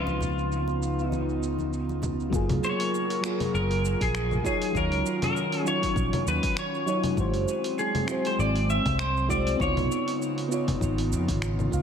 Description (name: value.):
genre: sunset chillout.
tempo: 99 BPM.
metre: 4/4.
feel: swing 55% on 16ths.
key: F# major.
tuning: A4 = 444 Hz.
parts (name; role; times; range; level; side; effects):
clean electric guitar; melody; 0.0-10.2 s; E#4 to E5; -30 LUFS; equal; lush chorus, ping-pong delay.
mellow FM electric piano; accompaniment; 0.0-11.8 s; E#3 to E#5; -30 LUFS; equal; chorus, auto-pan, tape echo.
airy breathy pad; sustained chords; 0.0-11.8 s; C#3 to A#4; -31 LUFS; right 1 dB; chorus, vintage 12-bit sampler grit.
fingered electric bass; bass; 0.0-11.8 s; F#1 to E#2; -29 LUFS; equal; none.
dusty soul sampler-style drum kit; drums; 0.1-11.8 s; congas, finger snaps, hi-hat, shaker; -34 LUFS; left 2 dB; overdrive, low-pass filter on perc, low-pass filter on hats, low-pass filter on snare.
congas; percussion; 0.1-2.2 s; none; -37 LUFS; equal; none.
electronic kick drum; drums; 2.3-11.8 s; none; -31 LUFS; equal; none.
room: moderate plate reverb, RT60 1.6 s, digital ambience.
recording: dreamy mix soaked in reverb.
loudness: -24 LUFS.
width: side -7 dB against mid.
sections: 0.0-2.3 A section; 2.3-11.8 B section.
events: filter sweep on analog synth pad 0.0-2.3.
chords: 0.0 C#9; 2.3 F#maj9; 4.4 D#m9; 7.2 G#aug7; 9.6 C#9.